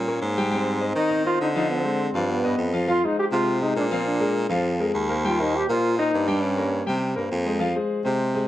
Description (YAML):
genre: latin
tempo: 203 BPM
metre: 4/4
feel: straight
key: unclear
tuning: A4 = 440 Hz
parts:
  - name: clear trombone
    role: melody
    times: 0.0-6.9 s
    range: B3 to G4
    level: -24 LUFS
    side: equal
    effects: plate reverb
  - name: warm grand piano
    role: accompaniment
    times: 0.0-8.5 s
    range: F3 to G5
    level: -26 LUFS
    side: left 2 dB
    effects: none
  - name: clear baritone saxophone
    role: bass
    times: 0.0-8.5 s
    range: Eb2 to Eb3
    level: -25 LUFS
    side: right 1 dB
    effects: none
room: moderate large studio reverb, RT60 1.1 s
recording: none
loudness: -21 LUFS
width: side -13 dB against mid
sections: 0.0-2.9 A section; 2.9-8.5 B section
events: none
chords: 0.0 Eb7 (rootless); 0.5 Abmaj7; 1.7 Dm7b5; 2.3 Gaug7; 2.9 Fm; 4.1 Bb7; 5.2 Eb6; 6.4 Gdim; 7.0 C5; 7.6 Fm